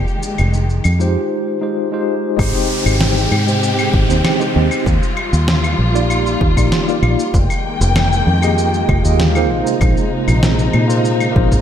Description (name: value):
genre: sunset chillout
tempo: 97 BPM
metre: 4/4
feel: straight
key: F dorian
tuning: A4 = 440 Hz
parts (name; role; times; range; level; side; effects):
- dark studio string section; sustained chords; 0.0-11.6 s; C3 to G5; -21 LUFS; left 2 dB; none
- fingered electric bass; bass; 0.0-11.6 s; F1 to Bb2; -16 LUFS; equal; none
- electronic shaker, claves and snare drum; drums; 0.1-11.6 s; none; -22 LUFS; equal; none
- tine electric piano; accompaniment; 1.0-11.6 s; Ab3 to Eb5; -19 LUFS; moving between left 4 dB and right 5 dB; medium stereo tremolo, auto-pan, ping-pong delay
- electronic kick drum; drums; 2.4-11.6 s; none; -18 LUFS; equal; overdrive
- downlifter; sound effects; 2.4-7.3 s; none; -25 LUFS; equal; none
room: moderate concert hall reverb, RT60 1.9 s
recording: big arena sound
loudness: -13 LUFS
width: side -9 dB against mid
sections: 0.0-2.4 A section; 2.4-11.6 B section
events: break 1.2-2.4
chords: 0.0 Fm9; 2.4 Abmaj7; 4.9 Ebmaj9; 7.3 Fm11; 9.5 Bb9sus4